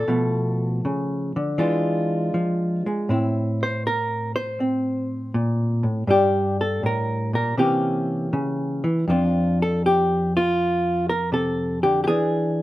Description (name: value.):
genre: solo jazz.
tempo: 80 BPM.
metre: 4/4.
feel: swing 68% on 8ths.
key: F major.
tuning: A4 = 440 Hz.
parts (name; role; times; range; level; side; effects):
hollow-body jazz guitar; solo; 0.0-12.6 s; F2 to C5; -20 LUFS; equal; none.
room: light reverb.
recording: minimal, uncompressed stereo recording.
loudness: -20 LUFS.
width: side -16 dB against mid.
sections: 0.0-12.6 A section.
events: none.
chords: 0.1 Bm7b5; 1.6 E7b9; 3.1 Am; 6.1 Gm; 7.6 C7b9; 9.1 F5; 12.1 E7.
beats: | 0.09 0.84 1.59 2.33 | 3.08 3.83 4.58 5.33 | 6.08 6.82 7.57 8.32 | 9.07 9.81 10.56 11.31 | 12.06.